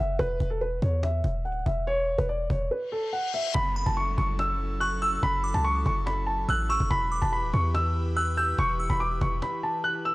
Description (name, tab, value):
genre	hip hop, trap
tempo	143 BPM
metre	4/4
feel	half-time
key	F# phrygian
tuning	A4 = 440 Hz
part	dark concert grand piano	melody	0.0-10.1 s	A4 to F#6	-28 LUFS	equal	tape echo
part	warm 808-style bass	bass	0.0-9.4 s	D1 to E2	-28 LUFS	equal	none
part	cajon	drums	0.2-10.1 s	none	-34 LUFS	equal	none
part	reverse cymbal and downlifter	sound effects	2.9-6.9 s	none	-37 LUFS	left 5 dB	none
part	airy breathy pad	sustained chords	3.5-10.1 s	E3 to B4	-37 LUFS	left 1 dB	chorus
part	delicate synth tine bell	second line	3.8-9.0 s	B5 to G6	-32 LUFS	right 1 dB	chorus, tape echo
room	small room ambience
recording	dry, gritty hardware recording, transformer saturation, cassette tape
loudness	-24 LUFS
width	side -19 dB against mid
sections	0.0-3.5 A section; 3.5-10.1 B section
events	reverse cymbal 2.9-3.5; kick muted 9.4-10.1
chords	0.2 Dsus2 (rootless); 3.5 F#m7; 6.9 Em